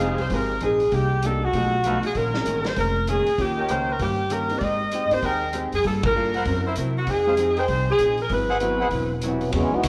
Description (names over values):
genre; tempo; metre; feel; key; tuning
jazz, big band swing; 195 BPM; 4/4; swing 62% on 8ths; unclear; A4 = 436 Hz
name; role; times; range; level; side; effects
warm saxophone section; melody; 0.0-9.2 s; Gb4 to Eb5; -25 LUFS; equal; none
archtop guitar, miked and amplified; accompaniment; 0.0-9.9 s; Ab2 to Bb4; -33 LUFS; equal; slapback echo
warm concert grand piano; accompaniment; 0.0-9.8 s; E3 to Bb4; -34 LUFS; equal; slapback echo
clear trumpet section; stabs; 0.0-8.9 s; Eb4 to G5; -32 LUFS; equal; slapback echo
upright bass; bass; 0.0-9.9 s; E1 to C3; -30 LUFS; equal; none
vintage drum kit; drums; 0.2-9.9 s; hi-hat, kick drum, ride cymbal, snare drum; -35 LUFS; equal; none
clear trombone section; second line; 9.2-9.9 s; C3 to F#4; -25 LUFS; equal; none
room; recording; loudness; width
moderate lush hall reverb, RT60 1.9 s, studio ambience; live gig heard through the venue's PA, club reverb; -23 LUFS; mono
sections
0.0-9.5 A section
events
band accent 6.0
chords
0.0 Fm7; 0.9 Cm7; 1.5 B7#11; 2.2 Bbm11; 3.4 Eb7; 4.6 Abmaj7; 5.8 Gm9; 6.5 Gb7#11; 7.1 Fm7; 8.3 Ab7alt